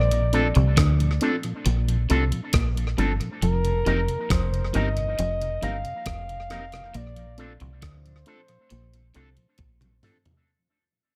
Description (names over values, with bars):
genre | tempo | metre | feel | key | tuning
lovers rock reggae | 68 BPM | 4/4 | straight | unclear | A4 = 440 Hz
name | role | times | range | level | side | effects
breathy flugelhorn | melody | 0.0-9.6 s | A4 to F5 | -33 LUFS | equal | tape echo
electric guitar at the edge of break-up | riff | 0.0-9.9 s | F2 to D3 | -34 LUFS | equal | none
deep dub fingered electric bass | bass | 0.0-10.0 s | F1 to D2 | -26 LUFS | equal | none
mellow tonewheel organ | accompaniment | 0.1-10.3 s | F2 to Eb4 | -36 LUFS | equal | slow rotary speaker, tape echo
clean 12-bit digital drum machine | drums | 0.1-10.5 s | hi-hat, kick drum, rim click, toms | -28 LUFS | equal | tape echo
mellow tine electric piano | accompaniment | 0.3-10.2 s | C4 to Bb4 | -33 LUFS | equal | none
electric guitar with an envelope filter | stabs | 0.3-10.2 s | C4 to Bb4 | -35 LUFS | equal | tape echo
room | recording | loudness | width
digital ambience | none | -24 LUFS | mono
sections
0.0-10.5 A section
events
fade-out 0.0-10.5; drum fill 9.6-10.5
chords
0.0 Bbmaj9; 3.4 F7sus4; 6.9 Bbmaj9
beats
0.78 1.66 2.54 | 3.42 4.30 5.18 6.06 | 6.95 7.83 8.71 9.59